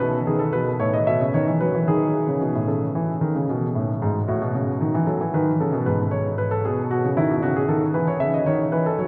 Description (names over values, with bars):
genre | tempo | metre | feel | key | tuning
classical, baroque-style two-part invention for grand piano | 76 BPM (dotted quarters) | 12/8 | straight | unclear | A4 = 441 Hz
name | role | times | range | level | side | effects
dark concert grand piano | solo | 0.0-9.1 s | G#2 to E5 | -22 LUFS | equal | none
room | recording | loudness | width
wet cathedral reverb, RT60 4.9 s | none | -22 LUFS | mono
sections
0.0-2.7 A section; 2.7-9.1 B section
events
none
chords
0.0 B7; 1.1 E/B; 2.7 A/C#; 4.3 D#dim/A; 5.9 G#m; 7.4 C#m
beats
0.27 1.07 1.87 | 2.67 3.48 4.27 5.07 | 5.86 6.65 7.43 8.21 | 9.00